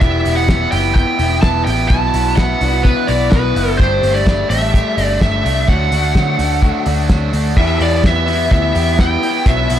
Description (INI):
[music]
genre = jangly indie pop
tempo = 127 BPM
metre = 4/4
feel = straight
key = E minor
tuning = A4 = 440 Hz
[part]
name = lead guitar through a small cranked amp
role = melody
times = 0.0-9.8 s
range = B4 to A5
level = -18 LUFS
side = equal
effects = overdrive
[part]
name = raw garage guitar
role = accompaniment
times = 0.0-9.8 s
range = B2 to G4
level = -22 LUFS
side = right 6 dB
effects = overdrive, spring reverb
[part]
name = electric guitar through a small old amp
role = arpeggios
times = 0.0-9.8 s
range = B2 to G4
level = -22 LUFS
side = left 8 dB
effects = none
[part]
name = vintage muted picked electric bass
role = bass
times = 0.0-9.8 s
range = E1 to D3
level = -18 LUFS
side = equal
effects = none
[part]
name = cloth-damped thuddy drum kit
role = drums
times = 0.0-9.8 s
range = crash cymbal, hi-hat, kick drum, snare drum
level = -17 LUFS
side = equal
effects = none
[sound]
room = light reverb, small room ambience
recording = none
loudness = -12 LUFS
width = side -10 dB against mid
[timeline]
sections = 0.0-7.6 A section; 7.6-9.8 B section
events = none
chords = 0.0 Em; 1.9 Bsus4; 3.8 Gsus2; 5.7 D; 7.6 Em